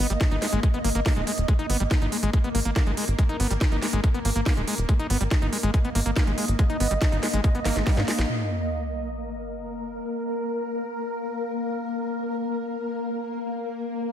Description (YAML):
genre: psychedelic trance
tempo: 141 BPM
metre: 4/4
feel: straight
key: unclear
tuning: A4 = 440 Hz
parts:
  - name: swarming drone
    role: sustained chords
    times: 0.0-14.1 s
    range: A#3 to D#5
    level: -29 LUFS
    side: left 1 dB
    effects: built-in reverb, sidechain pumping
  - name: overdriven acid bass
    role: riff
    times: 0.0-8.1 s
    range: G3 to D#4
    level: -30 LUFS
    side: equal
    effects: distortion, auto-pan, sidechain pumping, ping-pong delay
  - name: tight sequencer bass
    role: bass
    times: 0.0-8.3 s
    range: D#1 to G#2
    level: -25 LUFS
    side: equal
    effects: none
  - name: garage drum kit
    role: drums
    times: 0.1-8.3 s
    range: hi-hat, snare drum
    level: -30 LUFS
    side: right 1 dB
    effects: none
  - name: electronic kick drum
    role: drums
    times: 0.2-8.0 s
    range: none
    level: -23 LUFS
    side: equal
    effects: none
  - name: sub drop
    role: sound effects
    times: 8.3-10.0 s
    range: none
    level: -32 LUFS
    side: equal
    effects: none
room: digital ambience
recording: none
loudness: -23 LUFS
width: side -10 dB against mid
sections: 0.0-8.3 A section; 8.3-14.1 B section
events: drum fill 7.7-8.3; band accent 8.2; impact 8.3-10.0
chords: 0.0 G#5; 8.3 N.C.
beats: 0.21 0.63 1.06 | 1.48 1.91 2.33 2.76 | 3.19 3.61 4.04 4.46 | 4.89 5.31 5.74 6.16 | 6.59 7.01 7.44 7.87 | 8.29 8.72 9.14 9.57 | 9.99 10.42 10.85 11.27 | 11.70 12.12 12.55 12.97 | 13.40 13.82